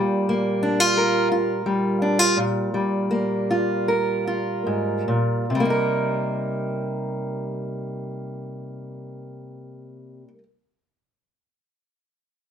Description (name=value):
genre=folk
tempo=71-88 BPM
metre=4/4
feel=straight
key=C minor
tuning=A4 = 440 Hz
part: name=fingerpicked steel-string acoustic guitar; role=accompaniment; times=0.0-10.4 s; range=Ab2 to Bb4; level=-21 LUFS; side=equal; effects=none
room=light reverb, small room ambience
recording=none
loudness=-20 LUFS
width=side -8 dB against mid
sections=0.0-5.5 A section; 5.5-8.9 B section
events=slowing down 0.0-5.5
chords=0.0 Gm7/Bb; 5.5 Cm7